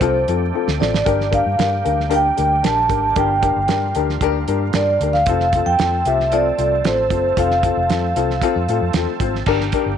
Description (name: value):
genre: uptempo 1960s-style soul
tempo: 114 BPM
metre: 4/4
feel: straight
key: F major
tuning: A4 = 440 Hz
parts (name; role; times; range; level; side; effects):
- vibraphone with soft mallets; melody; 0.0-8.9 s; C5 to A5; -18 LUFS; right 2 dB; none
- dark upright piano; accompaniment; 0.0-9.9 s; C4 to C5; -22 LUFS; left 12 dB; none
- overdriven tonewheel organ; sustained chords; 0.0-10.0 s; D3 to A4; -30 LUFS; right 13 dB; chorus vibrato, lush chorus
- vintage muted fingered electric bass; bass; 0.0-10.0 s; F1 to A2; -23 LUFS; equal; none
- cloth-damped thuddy drum kit; drums; 0.0-9.9 s; crash cymbal, hi-hat, kick drum, snare drum; -23 LUFS; right 4 dB; none
room: light reverb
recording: 1960s-style stereo with parts hard left and right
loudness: -15 LUFS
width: side -8 dB against mid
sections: 0.0-9.5 A section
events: drum fill 0.5-1.1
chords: 0.0 F; 1.1 Gm; 5.3 F; 9.5 Gm